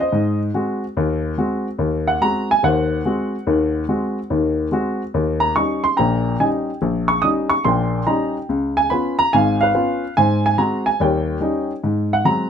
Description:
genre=solo jazz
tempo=143 BPM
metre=4/4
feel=swing 67% on 8ths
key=Ab mixolydian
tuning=A4 = 440 Hz
part: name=warm baby grand piano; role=solo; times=0.0-12.5 s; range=Ab1 to Eb6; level=-17 LUFS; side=equal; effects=none
room=little or no reverb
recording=close, detailed microphones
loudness=-17 LUFS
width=side -8 dB against mid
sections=0.0-11.8 A section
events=none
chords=0.1 Ab7; 5.1 Eb7; 8.5 Db7; 10.2 Ab7; 11.0 Eb7; 11.8 Ab7

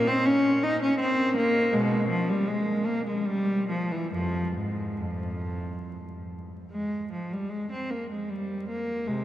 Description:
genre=classical, baroque-style suite movement for unaccompanied cello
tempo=67-82 BPM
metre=3/4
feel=rubato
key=F minor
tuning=A4 = 441 Hz
part: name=clear cello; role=solo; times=0.0-9.2 s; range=F2 to Eb4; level=-25 LUFS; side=equal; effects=none
room=wet cathedral reverb, RT60 7.2 s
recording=dark, warm production, vinyl crackle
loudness=-25 LUFS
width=side -13 dB against mid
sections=0.0-6.7 A section; 6.7-9.2 A section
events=none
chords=none

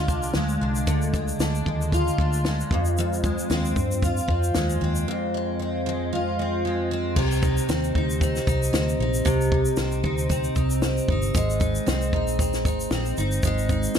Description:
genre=acoustic pop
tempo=115 BPM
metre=4/4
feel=swing 55% on 16ths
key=C minor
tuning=A4 = 440 Hz
part: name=picked steel-string acoustic guitar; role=accompaniment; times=0.0-14.0 s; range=F2 to F4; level=-24 LUFS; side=equal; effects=double-tracked left and right
part: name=vintage muted fingered electric bass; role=bass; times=0.0-14.0 s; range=G1 to G2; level=-26 LUFS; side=equal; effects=none
part: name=compact cocktail drum kit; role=drums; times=0.1-14.0 s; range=crash cymbal, kick drum, shaker, snare drum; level=-26 LUFS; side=left 1 dB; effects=none
room=light reverb, small room ambience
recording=none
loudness=-21 LUFS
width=side -8 dB against mid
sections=0.0-7.2 A section; 7.2-14.0 B section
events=break 5.1-7.2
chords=0.0 Ddim; 2.7 Fm7; 7.2 Cm; 11.3 Abadd9

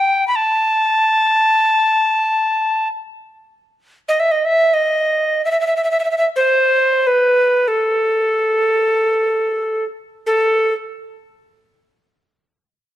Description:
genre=Arabic maqam ensemble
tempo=free time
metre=none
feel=none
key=unclear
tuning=A4 = 440 Hz
part: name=alto recorder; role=solo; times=0.0-10.7 s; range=A4 to B5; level=-14 LUFS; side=equal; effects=none
room=light reverb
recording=lossy compression artefacts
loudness=-14 LUFS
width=side -13 dB against mid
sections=0.0-10.3 A section; 10.3-13.0 B section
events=none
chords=none

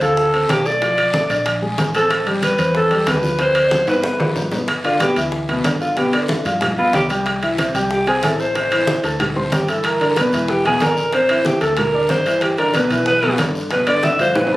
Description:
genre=Afro-Cuban jazz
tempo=186 BPM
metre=4/4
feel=straight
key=G major from 4.7 s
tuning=A4 = 441 Hz
part: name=growling alto saxophone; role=melody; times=0.0-14.6 s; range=F4 to E5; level=-17 LUFS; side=equal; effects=none
part: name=warm concert grand piano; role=accompaniment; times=0.0-14.6 s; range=B2 to D6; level=-22 LUFS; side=left 1 dB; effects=none
part: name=woody fretless electric bass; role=bass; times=0.0-14.6 s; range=E1 to G2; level=-27 LUFS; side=equal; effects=none
part: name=bongos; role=percussion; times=0.0-14.5 s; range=none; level=-29 LUFS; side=left 2 dB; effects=none
part: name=congas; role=percussion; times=0.0-14.6 s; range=none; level=-25 LUFS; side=equal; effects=none
part: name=guiro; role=percussion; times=0.0-14.6 s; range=none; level=-32 LUFS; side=left 1 dB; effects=none
part: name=timbales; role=percussion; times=0.0-14.5 s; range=none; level=-23 LUFS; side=right 1 dB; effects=none
room=moderate studio reverb, RT60 0.6 s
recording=recorded on a phone in the room, studio reverb, compression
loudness=-15 LUFS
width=side -17 dB against mid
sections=0.0-4.7 A section; 4.7-14.6 B section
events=drum fill 3.9-4.7, 14.4; alto saxophone solo 4.7-14.6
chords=0.0 Dm7; 0.8 Bm7b5; 1.5 Bb9; 2.1 Am9; 3.4 Dm7; 4.0 G7; 4.7 G6; 6.0 G7; 7.3 C6; 8.6 Am; 9.2 Dsus2; 9.8 G6; 10.5 E5; 11.1 Amadd11; 11.8 D5; 12.4 G6

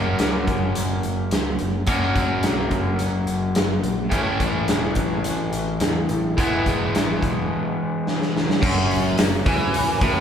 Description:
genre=classic rock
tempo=107 BPM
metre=4/4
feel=straight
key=unclear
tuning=A4 = 442 Hz
part: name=overdriven semi-hollow guitar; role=riff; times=0.0-10.2 s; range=F#2 to F#4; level=-22 LUFS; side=left 1 dB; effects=none
part: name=picked electric bass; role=bass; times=0.0-10.2 s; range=E1 to E2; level=-28 LUFS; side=equal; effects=none
part: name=big rock drum kit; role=drums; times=0.2-10.1 s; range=crash cymbal, hi-hat, kick drum, snare drum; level=-23 LUFS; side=equal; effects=none
part: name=clean lap steel guitar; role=second line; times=4.2-6.9 s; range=E4 to C#5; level=-31 LUFS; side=left 1 dB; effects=none
part: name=string machine, full ensemble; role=sustained chords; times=8.6-10.2 s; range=C#4 to C#5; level=-29 LUFS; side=right 1 dB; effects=ensemble chorus
part: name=tambourine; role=percussion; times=9.2-9.3 s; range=none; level=-41 LUFS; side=left 6 dB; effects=none
room=moderate large studio reverb, RT60 1.0 s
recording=band playing live in one room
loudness=-19 LUFS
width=side -8 dB against mid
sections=0.0-8.6 A section; 8.6-10.2 B section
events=break 7.5-8.6; drum fill 8.1-8.6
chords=0.0 F#; 4.1 A; 6.4 E; 8.6 F#

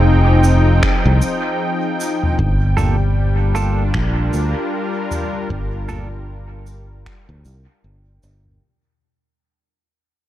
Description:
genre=ambient dub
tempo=77 BPM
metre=4/4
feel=swing 58% on 16ths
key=unclear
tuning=A4 = 440 Hz
part: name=warm analog pad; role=sustained chords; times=0.0-8.6 s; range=F3 to G5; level=-20 LUFS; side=left 1 dB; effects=chorus
part: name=fingered electric bass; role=bass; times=0.0-8.6 s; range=F1 to D2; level=-16 LUFS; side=equal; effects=tube saturation
part: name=soft-mallet drum kit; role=drums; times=0.4-8.6 s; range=cabasa, finger snaps, toms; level=-26 LUFS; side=left 1 dB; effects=dub echo
part: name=electronic kick drum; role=drums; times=0.8-7.2 s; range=none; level=-23 LUFS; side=equal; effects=none
part: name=clean electric guitar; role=stabs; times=2.8-6.1 s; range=Bb3 to A4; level=-29 LUFS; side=right 4 dB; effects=dub echo
room=small room reverb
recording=dark, warm production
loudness=-15 LUFS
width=side -13 dB against mid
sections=0.0-8.6 A section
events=fade-out 0.3-8.6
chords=0.0 Fm7; 2.4 Gm7

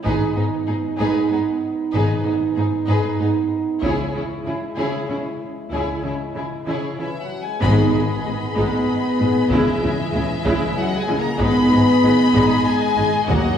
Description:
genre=cinematic, epic orchestral film score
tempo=95 BPM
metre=3/4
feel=straight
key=G# minor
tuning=A4 = 445 Hz
part: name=rich studio violin section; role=melody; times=0.0-13.6 s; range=D#4 to B5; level=-27 LUFS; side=left 4 dB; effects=none
part: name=dark French horn section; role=sustained chords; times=0.0-13.6 s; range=E3 to E4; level=-22 LUFS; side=right 1 dB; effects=none
part: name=warm symphonic violin section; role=second line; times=0.1-13.6 s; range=B3 to D#5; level=-28 LUFS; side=left 4 dB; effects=none
part: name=rich symphonic viola section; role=accompaniment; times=0.1-13.6 s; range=G#3 to E4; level=-25 LUFS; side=right 2 dB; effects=none
part: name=rich symphonic cello section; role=bass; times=0.1-13.4 s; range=D#2 to C#3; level=-25 LUFS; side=equal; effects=none
part: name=rich symphonic double bass section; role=bass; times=0.1-13.4 s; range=G#1 to D#2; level=-27 LUFS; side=equal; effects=none
part: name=taiko ensemble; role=drums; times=0.1-13.6 s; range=none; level=-29 LUFS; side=equal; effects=none
part: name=timpani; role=percussion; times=7.6-8.5, 13.3-13.6 s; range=G#2 to D#3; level=-29 LUFS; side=left 1 dB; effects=none
room=wet scoring stage reverb, RT60 2.0 s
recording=heard from further back in the room, small room ambience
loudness=-17 LUFS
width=side -8 dB against mid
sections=0.0-7.6 A section; 7.6-13.6 B section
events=build-up 0.0-7.6; band accent 7.6-8.2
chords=0.0 G#m; 3.8 C#m; 7.6 G#m; 9.5 C#madd9; 11.4 G#m

